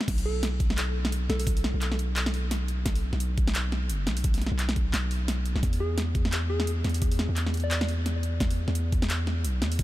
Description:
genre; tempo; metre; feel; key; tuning
half-time drum and bass; 173 BPM; 4/4; swing 57% on 16ths, half-time; B dorian; A4 = 440 Hz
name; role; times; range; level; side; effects
drum and bass drum kit; drums; 0.0-9.8 s; crash cymbal, handclaps, hi-hat, snare drum; -31 LUFS; equal; overdrive
long sustained 808-style bass; bass; 0.1-9.8 s; F#1 to E2; -27 LUFS; equal; none
electronic kick drum; drums; 0.1-9.8 s; none; -26 LUFS; equal; overdrive
soft struck synth lead; melody; 0.3-1.4, 5.8-7.9 s; G#4 to D5; -37 LUFS; equal; chorus, vintage 12-bit sampler grit, ping-pong delay
room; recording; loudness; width
little or no reverb; none; -25 LUFS; side -15 dB against mid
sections
0.1-9.8 A section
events
drop 0.1-9.8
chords
0.1 B5; 5.6 E5

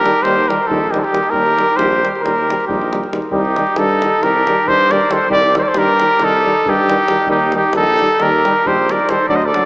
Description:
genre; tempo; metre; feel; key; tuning
balkan folk, Balkan brass band; 271 BPM (eighths); 9/8; straight; unclear; A4 = 440 Hz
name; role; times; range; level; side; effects
warm trumpet; melody; 0.0-9.7 s; G4 to Eb5; -14 LUFS; equal; none
clear flugelhorn; second line; 0.0-9.7 s; Eb4 to C5; -21 LUFS; right 1 dB; none
mellow euphonium; accompaniment; 0.0-9.6 s; D3 to Eb3; -25 LUFS; right 1 dB; none
warm trombone; accompaniment; 0.0-9.6 s; F#3 to G3; -24 LUFS; left 1 dB; none
warm tuba; bass; 0.0-9.5 s; Bb1 to G2; -22 LUFS; equal; none
davul; percussion; 0.1-9.6 s; none; -27 LUFS; left 1 dB; none
room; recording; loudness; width
wet cathedral reverb, RT60 5.2 s; in a vast, echoing space, small speaker sound; -12 LUFS; side -24 dB against mid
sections
0.0-9.7 A section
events
none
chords
0.0 Eb; 3.3 Cm; 7.3 Eb

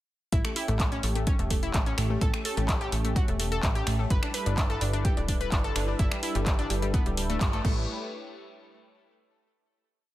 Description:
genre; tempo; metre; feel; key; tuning
progressive house; 127 BPM; 4/4; straight; A mixolydian; A4 = 440 Hz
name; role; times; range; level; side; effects
warm analog pad; sustained chords; 0.3-7.9 s; G3 to C#5; -36 LUFS; equal; chorus, sidechain pumping
analog pluck; arpeggios; 0.3-7.8 s; G3 to B4; -33 LUFS; left 1 dB; chorus, sidechain pumping, digital delay
plucky analog bass; bass; 0.3-7.9 s; D1 to A1; -30 LUFS; equal; sidechain pumping
deep house drum kit; drums; 0.3-7.7 s; crash cymbal, finger snaps, handclaps, hi-hat; -33 LUFS; left 1 dB; none
electronic kick drum; drums; 0.3-7.7 s; none; -27 LUFS; equal; none
room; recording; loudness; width
little or no reverb; none; -25 LUFS; side -15 dB against mid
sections
0.3-7.9 drop; 7.9-9.8 final hit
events
drop 0.3-7.9; band accent 7.4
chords
0.3 A7; 4.1 G6; 7.6 A7; 7.9 N.C.

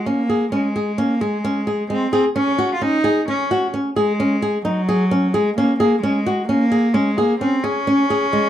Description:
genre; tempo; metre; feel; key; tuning
contemporary instrumental, contemporary; 130 BPM; 7/4; straight; Ab mixolydian; A4 = 441 Hz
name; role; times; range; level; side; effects
rich cello; melody; 0.0-8.5 s; Gb3 to F4; -20 LUFS; equal; none
flamenco guitar; arpeggios; 0.1-8.5 s; Ab3 to Ab4; -19 LUFS; equal; none
room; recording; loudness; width
moderate studio reverb, RT60 0.6 s; dark, warm production; -16 LUFS; side -11 dB against mid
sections
0.0-8.5 A section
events
none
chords
0.0 Absus4

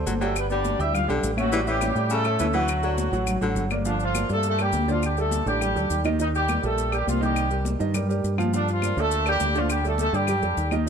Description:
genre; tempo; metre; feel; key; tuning
latin, salsa; 206 BPM; 4/4; straight; G minor from 3.9 s; A4 = 440 Hz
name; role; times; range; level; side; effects
warm baby grand piano; accompaniment; 0.0-10.9 s; D3 to G5; -29 LUFS; right 4 dB; none
fingered electric bass; bass; 0.0-10.9 s; G1 to A2; -26 LUFS; equal; none
clear baritone saxophone; second line; 0.1-3.6 s; C#3 to G3; -30 LUFS; left 4 dB; none
congas; percussion; 0.1-10.9 s; none; -31 LUFS; left 3 dB; none
maracas; percussion; 0.1-10.9 s; none; -38 LUFS; left 6 dB; none
mellow horn section; melody; 0.2-10.9 s; D3 to F5; -26 LUFS; equal; none
claves; percussion; 0.4-10.9 s; none; -36 LUFS; left 6 dB; none
room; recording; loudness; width
light reverb; none; -21 LUFS; side -7 dB against mid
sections
0.0-3.9 A section; 3.9-10.9 B section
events
none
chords
0.4 G; 1.5 A7; 2.7 D; 3.9 Gm7; 5.0 Dsus4; 6.2 Eb6; 7.4 Cm7; 8.5 Gm7; 9.7 Dsus4

